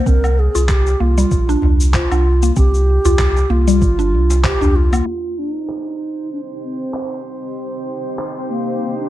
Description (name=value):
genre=organic downtempo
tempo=96 BPM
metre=4/4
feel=swing 56% on 16ths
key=C minor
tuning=A4 = 440 Hz
part: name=mellow hollow bass bansuri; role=melody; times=0.0-9.1 s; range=Bb3 to C5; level=-21 LUFS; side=right 1 dB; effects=tape echo
part: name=mallet-like synth pluck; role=arpeggios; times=0.0-5.1 s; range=G3 to C5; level=-21 LUFS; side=left 2 dB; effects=chorus, phaser, tape echo
part: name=warm sub bass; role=bass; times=0.1-5.0 s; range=G1 to C2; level=-15 LUFS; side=equal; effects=none
part: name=electronic cabasa, woodblock and handclaps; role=drums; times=0.1-9.1 s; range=none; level=-26 LUFS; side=equal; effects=low-pass filter on perc, low-pass filter on snare, low-pass filter on room
part: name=electronic kick drum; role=drums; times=0.1-4.6 s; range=none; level=-16 LUFS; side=equal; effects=none
part: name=darbuka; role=percussion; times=0.5-5.0 s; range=none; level=-24 LUFS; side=equal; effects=none
part: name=granular cloud pad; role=sustained chords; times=6.0-9.1 s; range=C4 to C5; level=-27 LUFS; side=equal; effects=built-in reverb, sidechain pumping
part: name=drifting glass-harmonics texture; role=texture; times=5.7-9.1 s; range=C5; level=-31 LUFS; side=right 6 dB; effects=chorus, built-in reverb
room=light reverb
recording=dark, warm production, low-pass filter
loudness=-14 LUFS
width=side -14 dB against mid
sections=0.0-5.1 A section; 5.1-9.1 B section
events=none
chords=0.0 Bb; 5.1 Cm